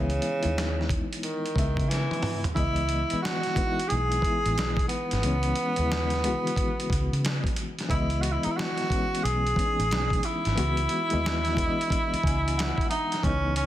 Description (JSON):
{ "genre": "R&B, neo-soul", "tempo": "90 BPM", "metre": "4/4", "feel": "swing 63% on 16ths", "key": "C# minor", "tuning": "A4 = 440 Hz", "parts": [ { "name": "warm tenor saxophone", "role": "melody", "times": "0.0-13.7 s", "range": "C#3 to G#4", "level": "-28 LUFS", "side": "right 1 dB", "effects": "none" }, { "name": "reed electric piano", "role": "accompaniment", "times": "0.0-13.7 s", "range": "C#3 to G#5", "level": "-32 LUFS", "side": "left 3 dB", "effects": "fast tremolo" }, { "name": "vintage muted fingered electric bass", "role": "bass", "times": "0.0-13.7 s", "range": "G#1 to C#3", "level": "-28 LUFS", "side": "equal", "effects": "none" }, { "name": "dusty soul sampler-style drum kit", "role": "drums", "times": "0.1-13.7 s", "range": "hi-hat, kick drum, snare drum, toms", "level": "-30 LUFS", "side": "equal", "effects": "none" } ], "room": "digital ambience", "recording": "dense, heavily limited modern master", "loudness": "-24 LUFS", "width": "side -13 dB against mid", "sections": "0.0-2.6 A section; 2.6-13.2 B section", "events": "drum fill 1.9-2.6; reed electric piano fill 11.9-13.2", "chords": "0.0 C#m9" }